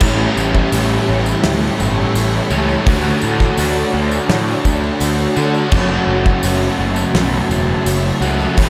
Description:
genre	rock, shoegaze and dream pop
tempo	84 BPM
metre	4/4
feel	straight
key	unclear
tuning	A4 = 440 Hz
part	soft string machine	sustained chords	0.0-8.7 s	F#4 to A5	-26 LUFS	equal	phaser, ensemble chorus
part	raw garage guitar	riff	0.0-8.7 s	A2 to G4	-22 LUFS	equal	overdrive, reverse reverb
part	thick fuzz guitar	riff	0.0-8.7 s	F#2 to D4	-22 LUFS	equal	distortion, ensemble chorus
part	fuzz picked electric bass	bass	0.0-8.7 s	E1 to D3	-22 LUFS	equal	overdrive
part	loose indie drum kit	drums	0.0-8.7 s	crash cymbal, hi-hat, kick drum, snare drum	-22 LUFS	equal	none
part	tambourine	percussion	0.0-8.7 s	none	-34 LUFS	equal	none
room	wet huge ambient reverb, RT60 8.4 s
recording	dreamy mix soaked in reverb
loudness	-16 LUFS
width	mono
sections	0.0-8.7 A section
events	none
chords	0.0 A7; 2.9 Dmaj7; 5.7 F#m7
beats	| 0.01 0.73 1.44 2.15 | 2.87 3.58 4.29 5.01 | 5.72 6.44 7.15 7.87 | 8.58

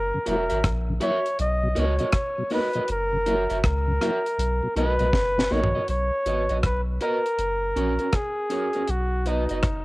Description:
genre	roots reggae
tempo	80 BPM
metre	4/4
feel	swing 64% on 16ths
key	B major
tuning	A4 = 440 Hz
part	warm flugelhorn	melody	0.0-9.8 s	D#4 to D#5	-25 LUFS	equal	cassette tape
part	soft dub sub bass	bass	0.0-9.8 s	E1 to C#2	-26 LUFS	equal	none
part	mellow tonewheel organ	accompaniment	0.1-5.8 s	F#2 to E4	-30 LUFS	left 1 dB	chorus vibrato, slow rotary speaker, cassette tape
part	electric guitar at the edge of break-up	accompaniment	0.3-9.6 s	C#4 to E5	-30 LUFS	right 2 dB	cassette tape
part	deep reggae drum kit	drums	0.3-9.8 s	hi-hat, kick drum, rim click, snare drum, toms	-26 LUFS	equal	cassette tape
room	light reverb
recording	home recording on cassette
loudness	-22 LUFS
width	side -21 dB against mid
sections	0.0-5.9 A section; 5.9-9.8 B section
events	drum fill 5.1-5.9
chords	0.0 F#7; 1.4 Bmaj7; 2.9 F#7; 4.4 Bmaj7; 5.9 B; 7.4 F#; 8.9 B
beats	0.64 1.38 2.13 | 2.88 3.63 4.38 5.12 | 5.88 6.62 7.38 8.13 | 8.88 9.63

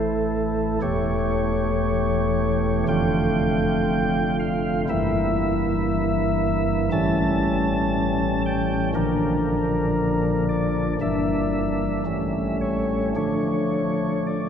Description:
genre	classical, chorale-style piece for pipe organ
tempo	58 BPM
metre	4/4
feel	uneven beats, rubato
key	D minor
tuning	A4 = 440 Hz
part	chamber organ, flutes	solo	0.0-14.5 s	E1 to A5	-20 LUFS	equal	none
room	wet cathedral reverb, RT60 4.6 s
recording	minimal, uncompressed stereo recording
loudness	-20 LUFS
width	side -8 dB against mid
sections	0.0-14.5 A section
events	none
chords	0.0 A5; 0.8 A7/E; 2.9 Dm/F; 4.9 Edim/G; 6.9 A7; 9.0 Bb; 11.0 Em7b5/G; 12.1 A7; 13.2 Dm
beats	| 0.82 1.82 2.88 3.89 | 4.89 5.88 6.93 7.95 | 8.96 9.98 11.01 12.06 | 13.16 14.26

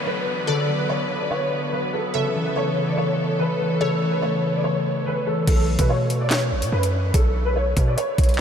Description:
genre	hip hop, drill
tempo	144 BPM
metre	4/4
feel	half-time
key	B minor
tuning	A4 = 440 Hz
part	dark baby grand piano	melody	0.0-8.4 s	A4 to D5	-25 LUFS	equal	ensemble chorus, low-pass filter, diffuse ambient delay
part	glassy wavetable pluck	second line	0.0-4.6 s	C#5 to F#5	-33 LUFS	equal	chorus, diffuse ambient delay
part	concert harp	accompaniment	0.0-8.4 s	C#3 to B3	-26 LUFS	left 2 dB	low-pass filter
part	rich studio string section	sustained chords	0.0-5.4 s	D3 to B4	-29 LUFS	equal	none
part	downlifter	sound effects	0.0-2.1 s	none	-38 LUFS	right 1 dB	none
part	hard-hitting 808-style bass	bass	5.5-8.4 s	A1 to B2	-22 LUFS	equal	none
part	drill drum kit	drums	5.5-8.4 s	crash cymbal, handclaps, hi-hat, kick drum, snare drum	-22 LUFS	equal	none
room	wet huge ambient reverb, RT60 7.8 s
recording	dreamy mix soaked in reverb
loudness	-19 LUFS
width	side -8 dB against mid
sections	0.0-5.5 A section; 5.5-8.4 B section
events	none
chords	0.0 Bmadd9; 2.1 A; 5.5 Bsus2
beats	0.06 | 0.47 0.89 1.31 1.73 | 2.14 2.56 2.98 3.39 | 3.81 4.22 4.64 5.06 | 5.47 5.89 6.31 6.72 | 7.14 7.56 7.97 8.39

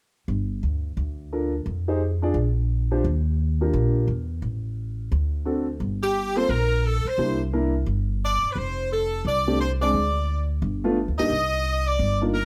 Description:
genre	jazz, big band swing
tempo	174 BPM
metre	4/4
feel	swing 62% on 8ths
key	G minor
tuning	A4 = 440 Hz
part	upright bass	bass	0.3-12.4 s	F1 to G2	-27 LUFS	equal	none
part	warm concert grand piano	accompaniment	1.3-12.3 s	Ab3 to D5	-28 LUFS	equal	none
part	edgy saxophone section	melody	6.0-12.4 s	G4 to Eb5	-27 LUFS	equal	none
room	light reverb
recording	none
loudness	-24 LUFS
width	mono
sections	0.3-5.8 A section; 5.8-12.4 B section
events	none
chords	0.3 Gm7; 1.7 Fm7; 2.4 Bb; 3.0 Ebmaj7; 4.4 N.C.; 5.1 D7; 5.8 Gm; 7.2 C9; 8.6 F6; 9.9 N.C.; 10.6 G7; 11.3 Cmadd9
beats	| 0.28 0.63 0.97 1.32 | 1.66 2.01 2.35 2.70 | 3.04 3.39 3.73 4.08 | 4.42 4.77 5.11 5.46 | 5.80 6.14 6.49 6.83 | 7.18 7.52 7.87 8.21 | 8.56 8.90 9.24 9.59 | 9.93 10.28 10.62 10.97 | 11.31 11.65 12.00 12.34

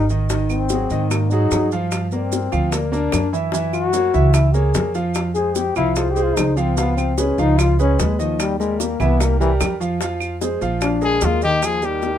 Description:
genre	Afro-Cuban jazz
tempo	148 BPM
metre	4/4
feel	straight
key	unclear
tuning	A4 = 439 Hz
part	warm trombone	second line	0.0-12.2 s	Eb3 to Ab4	-22 LUFS	left 5 dB	none
part	clear grand piano	accompaniment	0.0-12.2 s	Eb3 to F5	-23 LUFS	right 2 dB	none
part	upright bass	bass	0.0-12.2 s	Ab1 to Ab2	-21 LUFS	right 1 dB	none
part	maracas	percussion	0.1-12.2 s	none	-32 LUFS	right 8 dB	none
part	bongos	percussion	0.3-12.2 s	none	-27 LUFS	left 5 dB	none
part	claves	percussion	0.5-11.8 s	none	-30 LUFS	right 6 dB	none
part	breathy trumpet	melody	11.0-12.2 s	F4 to Ab4	-20 LUFS	left 3 dB	none
room	light reverb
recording	minimal, uncompressed stereo recording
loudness	-16 LUFS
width	side -10 dB against mid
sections	0.0-11.6 A section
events	trombone solo 0.0-11.6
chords	0.3 Ab7; 1.9 Gm7; 3.5 Gb9; 5.2 Fm; 6.8 Db9; 8.4 Eb; 9.2 C5; 10.0 Fm; 10.8 Bb7; 11.6 Eb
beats	| 0.30 0.70 1.11 1.51 | 1.92 2.32 2.73 3.13 | 3.54 3.94 4.35 4.75 | 5.16 5.56 5.96 6.37 | 6.77 7.18 7.58 7.99 | 8.39 8.80 9.20 9.60 | 10.01 10.41 10.82 11.22 | 11.62 12.03

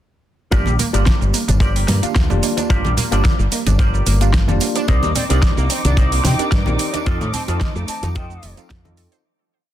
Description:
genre	nu-disco, nu disco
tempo	110 BPM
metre	4/4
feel	swing 54% on 16ths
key	G minor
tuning	A4 = 440 Hz
part	mellow tine electric piano	accompaniment	0.5-9.2 s	Bb3 to F5	-25 LUFS	right 2 dB	overdrive, fast stereo tremolo, sidechain pumping, dub echo
part	wide unison pluck	arpeggios	0.5-9.2 s	F3 to C5	-27 LUFS	right 4 dB	sidechain pumping, tape echo
part	electric guitar with an envelope filter	riff	0.5-9.2 s	Eb4 to Eb5	-27 LUFS	left 1 dB	lush chorus, dub echo
part	fingered electric bass with an envelope filter	bass	0.5-9.1 s	F1 to C3	-18 LUFS	equal	tube saturation
part	kick drum	drums	0.5-8.8 s	none	-17 LUFS	equal	none
part	pop drum kit	drums	0.5-9.2 s	hi-hat, shaker, snare drum	-24 LUFS	right 1 dB	overdrive
part	tambourine and congas	percussion	0.5-9.2 s	none	-26 LUFS	right 1 dB	none
part	muted chamber string section	sustained chords	4.9-9.3 s	Eb4 to D6	-27 LUFS	equal	sidechain pumping
part	mellow hollow jazz flute	melody	5.2-8.6 s	D5 to A5	-31 LUFS	left 1 dB	tape echo
room	studio ambience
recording	dense, heavily limited modern master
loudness	-15 LUFS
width	side -12 dB against mid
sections	0.5-9.2 drop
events	drop 0.5-9.2; fade-out 6.3-9.2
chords	0.5 Gm7; 4.9 Cm9; 7.1 F7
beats	| 0.52 1.06 1.61 2.16 | 2.70 3.25 3.79 4.34 | 4.88 5.43 5.97 6.52 | 7.07 7.61 8.16 8.70

